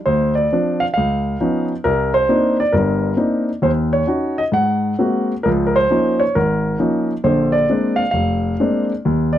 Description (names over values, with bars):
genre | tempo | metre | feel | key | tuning
solo jazz | 134 BPM | 4/4 | swing 67% on 8ths, rubato | unclear | A4 = 444 Hz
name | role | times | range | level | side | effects
warm grand piano | solo | 0.1-9.4 s | F1 to Gb5 | -15 LUFS | equal | none
room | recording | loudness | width
moderate booth ambience, RT60 0.3 s | dry, close 1970s-style studio recording | -15 LUFS | side -11 dB against mid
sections
0.0-9.4 A section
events
none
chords
0.1 Dm7; 0.9 Db9; 1.8 Cm9; 3.6 Ebm7; 4.5 Ab9; 5.5 Db69; 7.3 Bb9